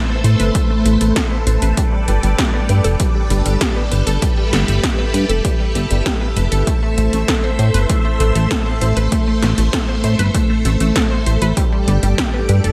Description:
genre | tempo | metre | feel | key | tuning
synthwave | 98 BPM | 4/4 | straight | A minor | A4 = 440 Hz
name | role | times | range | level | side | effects
string machine, full ensemble | sustained chords | 0.0-12.7 s | G3 to E5 | -24 LUFS | equal | ensemble chorus, sidechain pumping
unison pluck | arpeggios | 0.0-12.7 s | G3 to C5 | -26 LUFS | equal | phaser, digital delay
chorused synth bass | bass | 0.2-12.7 s | F1 to A2 | -18 LUFS | equal | sidechain pumping
80s electronic pad drums | drums | 0.2-12.7 s | hi-hat, snare drum | -25 LUFS | equal | none
electronic kick drum | drums | 0.5-12.3 s | none | -22 LUFS | equal | none
room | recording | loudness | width
light reverb, digital ambience | none | -16 LUFS | mono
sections
0.0-12.7 A section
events
none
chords
0.0 Amadd9; 1.8 Gadd9; 6.7 Amadd9; 11.6 Gadd9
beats
0.55 1.16 | 1.77 2.39 3.00 3.61 | 4.22 4.84 5.45 6.06 | 6.67 7.29 7.90 8.51 | 9.12 9.73 10.35 10.96 | 11.57 12.18

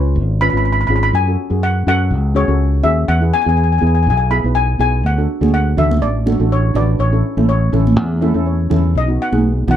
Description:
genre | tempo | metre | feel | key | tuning
calypso | 123 BPM | 4/4 | swing 54% on 16ths | A major | A4 = 440 Hz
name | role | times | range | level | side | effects
steel pan | melody | 0.0-9.8 s | C#5 to B5 | -19 LUFS | left 2 dB | none
steel pan | accompaniment | 0.0-9.8 s | B3 to E5 | -21 LUFS | equal | none
fingered electric bass | bass | 0.0-9.8 s | G#1 to F#2 | -15 LUFS | equal | none
congas | percussion | 5.4-9.8 s | none | -20 LUFS | right 2 dB | none
room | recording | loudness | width
light reverb | dark, warm production | -13 LUFS | side -10 dB against mid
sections
0.0-9.8 A section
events
steel pan fill 8.0-9.0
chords
0.0 C#7; 1.1 F#m; 3.1 E; 5.0 D; 7.0 A; 9.0 B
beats
0.16 0.65 | 1.14 1.62 2.11 2.60 | 3.09 3.58 4.07 4.56 | 5.04 5.53 6.02 6.51 | 7.00 7.49 7.98 8.46 | 8.95 9.44

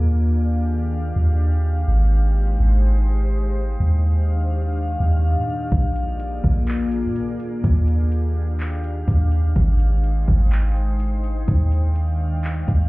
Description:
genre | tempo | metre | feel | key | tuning
hip hop, atmospheric cloud-rap | 125 BPM | 4/4 | half-time | Eb major | A4 = 444 Hz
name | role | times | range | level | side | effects
glassy FM pad | sustained chords | 0.0-12.9 s | Eb3 to G5 | -27 LUFS | left 2 dB | ensemble chorus, built-in reverb, sidechain pumping
soft 808-style bass | bass | 0.0-12.9 s | Ab1 to Bb2 | -18 LUFS | equal | none
smooth R&B drum kit | drums | 5.7-12.8 s | handclaps, hi-hat, kick drum | -22 LUFS | equal | none
room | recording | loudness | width
little or no reverb | heard muffled through a wall, club reverb, EQ | -18 LUFS | side -21 dB against mid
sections
0.0-12.9 A section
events
none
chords
0.0 Ebmaj9; 1.9 Abmaj7; 3.8 Ebmaj9; 5.7 Bb7; 7.6 Ebmaj9; 9.6 Abmaj7; 11.5 Ebmaj9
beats
0.44 0.92 1.40 | 1.88 2.36 2.84 3.32 | 3.80 4.28 4.76 5.24 | 5.72 6.20 6.68 7.16 | 7.64 8.12 8.60 9.08 | 9.56 10.04 10.52 11.00 | 11.48 11.96 12.44

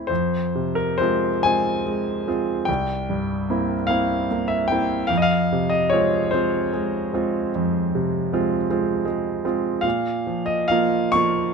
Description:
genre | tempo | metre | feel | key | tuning
classical, romantic nocturne for solo piano | 43-54 BPM (dotted quarters) | 12/8 | rubato | F minor | A4 = 440 Hz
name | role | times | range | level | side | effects
clear grand piano | solo | 0.0-11.5 s | C2 to Db6 | -20 LUFS | equal | none
room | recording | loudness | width
light reverb | close, detailed microphones | -20 LUFS | side -5 dB against mid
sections
0.1-11.5 A section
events
none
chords
0.1 Fm; 2.7 C7; 5.1 Fm; 9.8 Bbm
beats
| 0.10 1.45 2.68 3.90 | 5.10 6.33 7.53 8.69 | 9.84 11.15

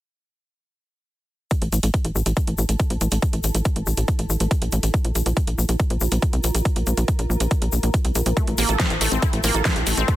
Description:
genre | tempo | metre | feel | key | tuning
psychedelic trance | 140 BPM | 4/4 | straight | unclear | A4 = 440 Hz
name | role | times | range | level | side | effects
big-room dance drum kit | drums | 1.5-10.2 s | hi-hat, snare drum | -27 LUFS | right 1 dB | overdrive
electronic kick drum | drums | 1.5-10.2 s | none | -22 LUFS | equal | overdrive
egg shaker | percussion | 1.5-10.2 s | none | -31 LUFS | left 6 dB | none
granular cloud pad | texture | 2.5-10.2 s | E4 to Bb5 | -35 LUFS | right 2 dB | built-in reverb, sidechain pumping
tight sequencer bass | bass | 1.6-10.0 s | A1 to C2 | -21 LUFS | equal | none
wide unison pluck | riff | 8.4-10.1 s | A3 to A4 | -24 LUFS | moving between left 8 dB and right 4 dB | auto-pan, sidechain pumping, ping-pong delay
room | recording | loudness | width
digital ambience | dense, heavily limited modern master | -19 LUFS | side -15 dB against mid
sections
1.5-10.2 A section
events
fade-in on ambient pad 1.5-10.2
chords
1.5 A5; 4.9 Bb5; 8.4 A5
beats
| 1.51 1.94 2.37 2.80 | 3.22 3.65 4.08 4.51 | 4.94 5.37 5.80 6.22 | 6.65 7.08 7.51 7.94 | 8.37 8.80 9.22 9.65 | 10.08

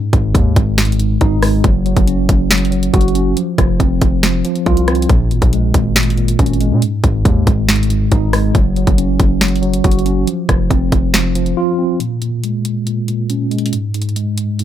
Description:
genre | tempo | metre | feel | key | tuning
hip hop, trap | 139 BPM | 4/4 | half-time | Bb minor | A4 = 441 Hz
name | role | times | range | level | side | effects
mellow tine electric piano | accompaniment | 0.0-14.6 s | Ab2 to Gb4 | -16 LUFS | equal | medium stereo tremolo, low-pass filter
hard-hitting 808-style bass | bass | 0.1-11.5 s | F1 to Bb2 | -17 LUFS | equal | none
trap drum kit | drums | 0.1-14.6 s | hi-hat, kick drum, rim click, snare drum | -15 LUFS | equal | none
room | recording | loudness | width
digital ambience | none | -12 LUFS | side -11 dB against mid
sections
0.0-12.0 A section; 12.0-14.6 B section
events
drums muted 11.6-12.0; filter sweep on tine electric piano 12.0-14.6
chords
0.0 Ab5; 1.6 Gb5; 3.4 F5; 5.1 Bbm7; 6.8 Ab5; 8.5 Gb5; 10.3 F5; 12.0 Bbm7; 13.7 Ab5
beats
0.35 0.78 1.21 | 1.64 2.07 2.50 2.94 | 3.37 3.80 4.23 4.66 | 5.09 5.53 5.96 6.39 | 6.82 7.25 7.68 8.12 | 8.55 8.98 9.41 9.84 | 10.28 10.71 11.14 11.57 | 12.00 12.43 12.87 13.30 | 13.73 14.16 14.59

